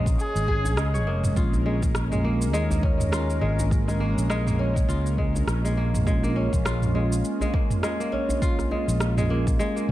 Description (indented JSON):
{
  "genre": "organic downtempo",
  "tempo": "102 BPM",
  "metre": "4/4",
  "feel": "swing 57% on 16ths",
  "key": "Bb minor pentatonic",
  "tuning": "A4 = 441 Hz",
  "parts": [
    { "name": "warm analog pad", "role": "sustained chords", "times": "0.0-9.9 s", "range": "Ab3 to Eb5", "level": "-34 LUFS", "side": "left 1 dB", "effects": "chorus, sidechain pumping" },
    { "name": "kora", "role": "arpeggios", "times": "0.0-9.9 s", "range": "Ab3 to Db5", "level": "-30 LUFS", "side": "left 1 dB", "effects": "tape echo" },
    { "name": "fretless electric bass", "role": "bass", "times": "0.0-9.9 s", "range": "F1 to Eb2", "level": "-25 LUFS", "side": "equal", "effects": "none" },
    { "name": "deep house drum kit", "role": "drums", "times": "0.1-9.9 s", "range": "rim click, shaker, toms", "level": "-30 LUFS", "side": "right 1 dB", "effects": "studio reverb" },
    { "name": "electronic kick drum", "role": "drums", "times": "0.1-9.9 s", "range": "none", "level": "-25 LUFS", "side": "equal", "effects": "studio reverb" },
    { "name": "dark kamancheh", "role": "melody", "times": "0.2-1.0 s", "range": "Ab4", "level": "-31 LUFS", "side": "right 1 dB", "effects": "vintage 12-bit sampler grit, tape echo" },
    { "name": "djembe", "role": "percussion", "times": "0.6-8.8 s", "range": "none", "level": "-31 LUFS", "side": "equal", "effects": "none" },
    { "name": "mellow tine electric piano", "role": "accompaniment", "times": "1.3-9.9 s", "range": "Ab3 to F4", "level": "-31 LUFS", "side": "right 3 dB", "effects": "medium stereo tremolo, sidechain pumping, tape echo" }
  ],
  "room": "light reverb, digital ambience",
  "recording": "dark, warm production",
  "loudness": "-21 LUFS",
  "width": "side -14 dB against mid",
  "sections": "0.0-9.9 A section",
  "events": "none",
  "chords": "0.0 Bbm7"
}